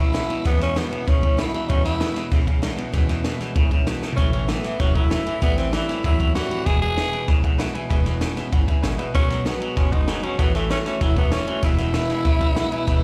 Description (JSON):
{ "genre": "rockabilly", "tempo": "193 BPM", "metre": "4/4", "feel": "straight", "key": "E major", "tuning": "A4 = 440 Hz", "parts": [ { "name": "growling tenor saxophone", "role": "melody", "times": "0.0-13.0 s", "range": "A3 to G#4", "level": "-28 LUFS", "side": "equal", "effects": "none" }, { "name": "picked steel-string acoustic guitar", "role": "accompaniment", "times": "0.0-13.0 s", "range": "E2 to F#4", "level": "-34 LUFS", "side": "equal", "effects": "none" }, { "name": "twangy electric guitar", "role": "riff", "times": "0.0-13.0 s", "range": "E2 to G#3", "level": "-30 LUFS", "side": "equal", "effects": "harmonic tremolo" }, { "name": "upright bass", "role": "bass", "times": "0.0-13.0 s", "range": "E1 to E2", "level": "-26 LUFS", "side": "equal", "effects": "none" }, { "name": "compact cocktail drum kit", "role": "drums", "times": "0.1-12.9 s", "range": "kick drum, ride cymbal, snare drum, toms", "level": "-25 LUFS", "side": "equal", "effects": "none" }, { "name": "bright upright piano", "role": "accompaniment", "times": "6.7-13.0 s", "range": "B4 to B5", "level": "-38 LUFS", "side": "equal", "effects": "slapback echo" } ], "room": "light reverb", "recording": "live gig heard through the venue's PA, club reverb", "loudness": "-21 LUFS", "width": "mono", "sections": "0.0-13.0 A section", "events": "drum fill 4.0", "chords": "0.0 E6; 4.2 A6; 5.4 Am7; 6.7 E6; 9.1 B6; 10.4 A6; 11.6 E6" }